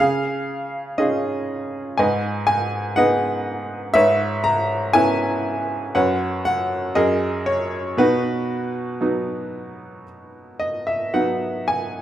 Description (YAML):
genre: classical, lyrical solo piano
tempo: 56-62 BPM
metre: 4/4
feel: rubato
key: B major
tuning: A4 = 438 Hz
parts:
  - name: bright upright piano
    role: solo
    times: 0.0-12.0 s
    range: F#2 to A#5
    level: -19 LUFS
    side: equal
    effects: none
room: moderate recital hall reverb, RT60 1.2 s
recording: none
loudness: -19 LUFS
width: side -12 dB against mid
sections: 0.0-12.0 A section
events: upright piano fill 10.1-12.0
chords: 0.0 C#add9; 2.0 G#m; 3.9 C#m7/G#; 5.9 F#sus4; 7.0 F#add9; 8.0 B